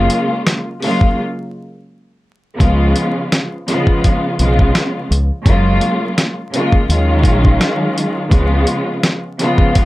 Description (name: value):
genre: hip hop, boom-bap hip-hop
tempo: 84 BPM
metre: 4/4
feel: swing 58% on 16ths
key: unclear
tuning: A4 = 439 Hz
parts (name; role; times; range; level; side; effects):
- warm studio string section; accompaniment; 0.0-9.9 s; C#3 to E#4; -16 LUFS; equal; high-pass filter, low-pass filter
- deep dub fingered electric bass; bass; 0.0-8.6 s; F#1 to D#2; -14 LUFS; equal; none
- dusty soul sampler-style drum kit; drums; 0.1-9.9 s; hi-hat, kick drum, rim click, snare drum; -14 LUFS; equal; none
room: little or no reverb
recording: vinyl crackle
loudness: -13 LUFS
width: side -17 dB against mid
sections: 0.0-9.9 A section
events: break 1.2-2.6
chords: 0.0 F#maj9; 1.2 N.C.; 2.6 C#7; 5.5 F#maj9; 6.9 D#m11; 8.3 C#7